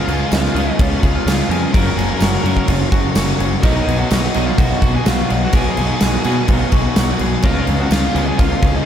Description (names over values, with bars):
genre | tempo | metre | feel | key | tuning
rock, shoegaze and dream pop | 126 BPM | 4/4 | straight | unclear | A4 = 441 Hz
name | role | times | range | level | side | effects
octave-fuzz lead guitar | melody | 0.0-8.9 s | C#4 to A#4 | -24 LUFS | equal | distortion, ping-pong delay
twangy electric guitar | arpeggios | 0.0-8.8 s | E#4 to A#4 | -28 LUFS | left 2 dB | lush chorus, ping-pong delay
crunchy overdriven guitar | riff | 0.0-8.9 s | F#2 to C#4 | -24 LUFS | equal | none
overdriven electric guitar | riff | 0.0-8.9 s | F#2 to F#4 | -25 LUFS | right 7 dB | reverse reverb
thick fuzz guitar | riff | 0.0-8.9 s | F#2 to C#4 | -24 LUFS | left 7 dB | distortion, lush chorus
fuzz picked electric bass | bass | 0.1-8.8 s | F#1 to B2 | -20 LUFS | equal | overdrive
huge arena drum kit | drums | 0.1-8.7 s | crash cymbal, kick drum, snare drum | -17 LUFS | equal | none
tambourine | percussion | 0.3-8.0 s | none | -35 LUFS | right 9 dB | none
room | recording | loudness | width
moderate huge ambient reverb, RT60 8.2 s | dreamy mix soaked in reverb | -13 LUFS | side -9 dB against mid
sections
0.0-8.9 A section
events
none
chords
0.0 C#7; 1.7 F#; 3.6 B6; 7.4 C#7